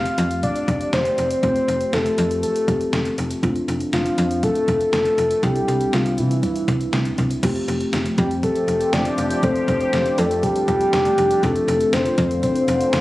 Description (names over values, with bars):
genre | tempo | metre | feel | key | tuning
synth-pop | 120 BPM | 4/4 | straight | F major | A4 = 440 Hz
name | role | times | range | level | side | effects
soft octave-layered synth lead | melody | 0.0-13.0 s | E4 to F5 | -20 LUFS | left 1 dB | chorus, digital delay
muted felt-like synth keys | accompaniment | 0.0-13.0 s | G3 to A4 | -26 LUFS | left 1 dB | chorus
slap-like FM bass | bass | 0.0-13.0 s | F1 to C3 | -24 LUFS | equal | none
detuned 8-bit digital drum machine | drums | 0.1-13.0 s | crash cymbal, hi-hat, kick drum, snare drum | -26 LUFS | equal | overdrive
sweeping resonant pad | sustained chords | 7.9-13.0 s | D3 to G4 | -25 LUFS | equal | chorus
room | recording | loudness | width
light reverb | recorded on a phone in the room, studio reverb | -18 LUFS | side -17 dB against mid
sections
0.0-7.4 A section; 7.4-13.0 B section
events
none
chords
0.0 Fadd9; 3.4 Dm7/F; 5.4 Cadd9; 7.4 Fadd9; 11.4 Dm7/F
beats
0.43 0.93 | 1.43 1.93 2.43 2.93 | 3.43 3.93 4.43 4.93 | 5.43 5.93 6.43 6.93 | 7.43 7.93 8.43 8.93 | 9.43 9.93 10.43 10.93 | 11.43 11.93 12.43 12.93